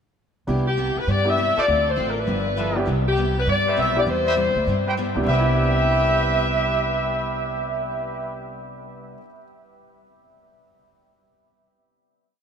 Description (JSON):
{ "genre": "jazz, big band swing", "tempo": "200 BPM", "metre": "4/4", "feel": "swing 62% on 8ths", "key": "C major", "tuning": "A4 = 438 Hz", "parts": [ { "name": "clear concert grand piano", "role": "accompaniment", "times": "0.5-9.4 s", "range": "C3 to G6", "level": "-30 LUFS", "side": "right 1 dB", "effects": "none" }, { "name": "picked steel-string acoustic guitar", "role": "accompaniment", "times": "0.5-9.2 s", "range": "G2 to A4", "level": "-31 LUFS", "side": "left 4 dB", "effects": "ensemble chorus" }, { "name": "upright bass", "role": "bass", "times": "0.5-9.1 s", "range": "G1 to G2", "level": "-25 LUFS", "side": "right 1 dB", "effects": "none" }, { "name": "edgy saxophone section", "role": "melody", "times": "0.7-4.9 s", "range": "G4 to E5", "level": "-23 LUFS", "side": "left 2 dB", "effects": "ping-pong delay" }, { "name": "clear trumpet section", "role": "stabs", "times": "1.6-8.5 s", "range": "F4 to G5", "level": "-24 LUFS", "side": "right 2 dB", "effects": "none" } ], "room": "wet cathedral reverb, RT60 5.0 s", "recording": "dreamy mix soaked in reverb", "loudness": "-19 LUFS", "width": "side -7 dB against mid", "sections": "0.5-5.3 A section; 5.3-7.7 final chord", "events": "none", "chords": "0.5 Cmaj7; 1.7 Dm7; 2.3 G13; 2.9 Cmaj7", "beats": "| 0.48 0.78 1.08 1.38 | 1.68 1.98 2.28 2.58 | 2.87 3.17 3.47 3.77 | 4.07 4.37 4.67 4.97 | 5.27 5.57 5.87 6.17 | 6.47 6.77 7.08 7.38" }